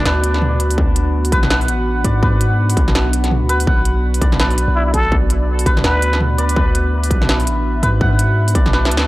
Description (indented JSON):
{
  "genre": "half-time drum and bass",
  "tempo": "166 BPM",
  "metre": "4/4",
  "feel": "swing 59% on 16ths, half-time",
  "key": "B dorian",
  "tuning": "A4 = 442 Hz",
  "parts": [
    { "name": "trumpet with plunger mute", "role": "melody", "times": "0.0-0.1, 4.8-6.2 s", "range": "D4 to B4", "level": "-24 LUFS", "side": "equal", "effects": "tape echo" },
    { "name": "dark analog pad", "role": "sustained chords", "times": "0.0-9.1 s", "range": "B3 to F#5", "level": "-24 LUFS", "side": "right 1 dB", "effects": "chorus, vintage 12-bit sampler grit, sidechain pumping" },
    { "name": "santur", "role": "arpeggios", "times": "0.0-9.1 s", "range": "B4 to F#5", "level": "-22 LUFS", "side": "equal", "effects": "vintage 12-bit sampler grit, tape echo" },
    { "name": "long sustained 808-style bass", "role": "bass", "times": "0.0-9.1 s", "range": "A1 to G#2", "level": "-17 LUFS", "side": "equal", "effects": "none" },
    { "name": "industrial drum kit", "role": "drums", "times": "0.1-9.1 s", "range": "hi-hat, snare drum, toms", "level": "-20 LUFS", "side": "equal", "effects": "none" },
    { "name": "electronic kick drum", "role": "drums", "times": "0.8-8.6 s", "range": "none", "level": "-18 LUFS", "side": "equal", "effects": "distortion" }
  ],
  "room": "digital ambience",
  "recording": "dry, gritty hardware recording",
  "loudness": "-13 LUFS",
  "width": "side -18 dB against mid",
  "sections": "0.0-9.1 A section",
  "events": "drum fill 8.7-9.1",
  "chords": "0.0 Bm",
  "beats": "0.06 0.42 | 0.78 1.14 1.50 1.86 | 2.23 2.59 2.95 3.31 | 3.67 4.03 4.39 4.76 | 5.12 5.48 5.84 6.20 | 6.56 6.92 7.29 7.65 | 8.01 8.37 8.73"
}